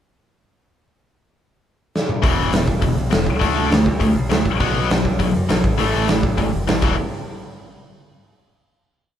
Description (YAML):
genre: punk rock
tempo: 203 BPM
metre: 4/4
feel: straight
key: unclear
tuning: A4 = 436 Hz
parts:
  - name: big rock drum kit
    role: drums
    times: 2.0-6.9 s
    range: crash cymbal, hi-hat, kick drum, snare drum, toms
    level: -20 LUFS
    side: equal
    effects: none
  - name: distorted electric guitar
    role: riff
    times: 2.2-6.9 s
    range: E2 to D4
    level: -23 LUFS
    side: right 4 dB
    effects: distortion
  - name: tight distorted guitar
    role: riff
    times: 2.2-6.9 s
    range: E2 to D4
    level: -22 LUFS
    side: left 7 dB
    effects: distortion
  - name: modern bright picked electric bass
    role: bass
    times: 2.2-7.0 s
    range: E1 to F#2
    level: -23 LUFS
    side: equal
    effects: none
room: moderate studio reverb, RT60 0.5 s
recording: band playing live in one room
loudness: -16 LUFS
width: side -10 dB against mid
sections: 1.1-2.2 pickup bar; 2.2-7.0 verse; 7.0-8.1 final hit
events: drum fill 1.9, 6.8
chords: 1.1 N.C.; 2.2 E5; 3.4 D5; 4.6 B5; 5.6 A5; 6.8 E5; 7.0 N.C.